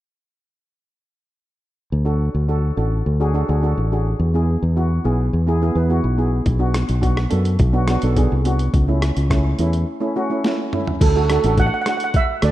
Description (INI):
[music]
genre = calypso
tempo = 106 BPM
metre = 4/4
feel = straight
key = unclear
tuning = A4 = 440 Hz
[part]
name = fingered electric bass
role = bass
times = 1.9-12.5 s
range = A1 to F#2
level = -18 LUFS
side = equal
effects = none
[part]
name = steel pan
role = accompaniment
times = 2.0-12.5 s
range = A3 to B4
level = -23 LUFS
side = right 1 dB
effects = none
[part]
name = boom bap sampler-style drum kit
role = drums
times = 6.5-12.5 s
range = crash cymbal, hi-hat, kick drum, rim click, snare drum, toms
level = -21 LUFS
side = equal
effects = none
[part]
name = steel pan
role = melody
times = 11.0-12.5 s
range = A4 to F#5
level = -19 LUFS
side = right 6 dB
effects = none
[sound]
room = light reverb, digital ambience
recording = rough home demo mix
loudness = -16 LUFS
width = side -14 dB against mid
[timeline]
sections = 1.9-11.0 A section; 11.0-12.5 B section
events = break 9.9-11.0; drum fill 10.4-11.0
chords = 1.9 D; 4.2 Eadd9; 6.5 Bm; 8.7 A/C#; 11.0 D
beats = | 1.92 2.49 3.06 3.62 | 4.19 4.76 5.33 5.90 | 6.47 7.04 7.61 8.18 | 8.74 9.31 9.88 10.45 | 11.02 11.59 12.15